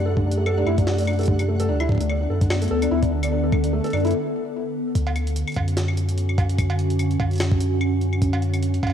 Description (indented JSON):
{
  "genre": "IDM",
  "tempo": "147 BPM",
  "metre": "4/4",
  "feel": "swing 56% on 16ths",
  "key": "D major",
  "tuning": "A4 = 440 Hz",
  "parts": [
    { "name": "glassy FM pad", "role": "sustained chords", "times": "0.0-8.9 s", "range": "C3 to A4", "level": "-25 LUFS", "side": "left 1 dB", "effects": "ensemble chorus, built-in reverb, phaser, vintage 12-bit sampler grit" },
    { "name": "felt-muted upright piano", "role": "arpeggios", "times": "0.0-4.1 s", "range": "D3 to D5", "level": "-26 LUFS", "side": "right 1 dB", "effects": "ping-pong delay" },
    { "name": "warm sub bass", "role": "bass", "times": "0.0-8.9 s", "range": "D2 to F#2", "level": "-22 LUFS", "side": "equal", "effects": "none" },
    { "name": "flickering grainy texture", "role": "texture", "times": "0.0-4.1 s", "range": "F#5", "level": "-42 LUFS", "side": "equal", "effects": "built-in reverb" },
    { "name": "electronic kick drum", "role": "drums", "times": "0.2-8.9 s", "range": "none", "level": "-22 LUFS", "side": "equal", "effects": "none" },
    { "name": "jungle sampler-style drum kit", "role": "drums", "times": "0.3-8.9 s", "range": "claves, cowbell, hi-hat, snare drum", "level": "-31 LUFS", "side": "equal", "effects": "tape echo" }
  ],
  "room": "light reverb, digital ambience",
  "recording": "rough home demo mix",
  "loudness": "-20 LUFS",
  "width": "side -9 dB against mid",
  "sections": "0.0-5.0 A section; 5.0-8.9 A section",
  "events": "break 4.1-5.0",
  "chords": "0.0 Am7; 1.7 Bm7/D; 5.0 Dmaj7",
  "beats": "| 0.05 0.46 0.87 1.28 | 1.69 2.10 2.50 2.91 | 3.32 3.73 4.14 4.54 | 4.95 5.36 5.77 6.18 | 6.58 6.99 7.40 7.81 | 8.22 8.63"
}